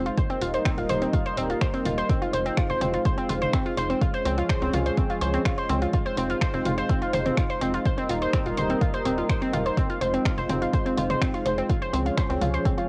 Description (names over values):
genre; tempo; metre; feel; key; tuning
melodic techno; 125 BPM; 4/4; straight; F minor; A4 = 440 Hz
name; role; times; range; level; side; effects
dark analog pad; sustained chords; 0.0-12.9 s; F3 to Eb5; -32 LUFS; equal; chorus, sidechain pumping, cassette tape
warbly dusty pluck; arpeggios; 0.0-12.9 s; C4 to C6; -30 LUFS; equal; chorus, sidechain pumping, cassette tape, analog delay
tight sequencer bass; bass; 0.0-12.6 s; Eb1 to Db2; -33 LUFS; equal; sidechain pumping
punchy analog drum machine; drums; 0.1-12.9 s; finger snaps, hi-hat, toms; -36 LUFS; equal; sidechain pumping on hats, cassette tape, sidechain pumping on toms, sidechain pumping on cymbals
electronic kick drum; drums; 0.2-12.8 s; none; -28 LUFS; equal; cassette tape
room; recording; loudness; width
little or no reverb; home recording on cassette; -25 LUFS; mono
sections
0.0-12.9 A section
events
none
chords
0.2 Eb; 2.1 Fm7; 4.0 Db; 5.9 Fm7; 7.9 Eb; 9.8 Fm7; 11.7 Db